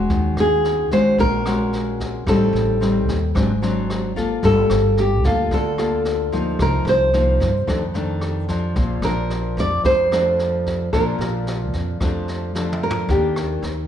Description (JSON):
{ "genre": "bossa nova", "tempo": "111 BPM", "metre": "4/4", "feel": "straight", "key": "Bb major", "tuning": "A4 = 442 Hz", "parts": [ { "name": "nylon-string guitar", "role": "accompaniment", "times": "0.0-13.9 s", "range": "F2 to A4", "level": "-22 LUFS", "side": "left 2 dB", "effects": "none" }, { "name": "upright bass", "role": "bass", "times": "0.0-13.9 s", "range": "G1 to G2", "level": "-24 LUFS", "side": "equal", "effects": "none" }, { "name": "jazz brush drum kit", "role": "drums", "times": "0.1-13.7 s", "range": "kick drum, rim click, snare drum, toms", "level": "-28 LUFS", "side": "equal", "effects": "none" }, { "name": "nylon-string guitar", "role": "melody", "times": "0.4-13.9 s", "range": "F4 to D5", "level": "-20 LUFS", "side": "right 1 dB", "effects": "none" } ], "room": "light reverb", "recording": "none", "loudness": "-17 LUFS", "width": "side -9 dB against mid", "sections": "0.0-13.1 A section", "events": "drum fill 12.5-13.1", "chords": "0.1 Ebm7; 2.3 Am7b5; 3.3 Ab7#11; 4.4 Gm9; 6.6 Cm7; 7.7 F6; 8.8 Bbmaj7; 13.1 Ebmaj7", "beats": "| 0.10 0.64 1.19 1.73 | 2.27 2.81 3.35 3.89 | 4.43 4.97 5.51 6.05 | 6.59 7.13 7.67 8.22 | 8.76 9.30 9.84 10.38 | 10.92 11.46 12.00 12.55 | 13.09 13.63" }